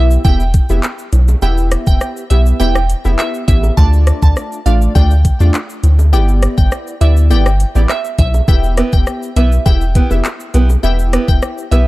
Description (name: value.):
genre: dancehall.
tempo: 102 BPM.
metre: 4/4.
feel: straight.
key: E phrygian.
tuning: A4 = 441 Hz.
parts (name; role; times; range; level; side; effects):
glassy wavetable pluck; melody; 0.0-11.9 s; E5 to A5; -22 LUFS; right 2 dB; chorus, digital delay.
synth brass stab; accompaniment; 0.0-11.9 s; A3 to E5; -21 LUFS; left 1 dB; chorus.
punchy sub bass; bass; 0.0-11.9 s; E1 to E2; -11 LUFS; equal; none.
afro-pop drum kit; drums; 0.1-11.9 s; handclaps, hi-hat, kick drum, rim click, shaker; -14 LUFS; equal; none.
bongos; percussion; 0.2-11.0 s; none; -30 LUFS; right 1 dB; none.
picked acoustic archtop guitar; arpeggios; 8.8-11.9 s; B3 to B4; -20 LUFS; right 3 dB; none.
room: digital ambience.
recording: dark, warm production.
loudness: -10 LUFS.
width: side -18 dB against mid.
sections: 0.0-11.9 A section.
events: none.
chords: 0.0 Em; 3.8 Dm; 6.1 G6; 8.5 Em.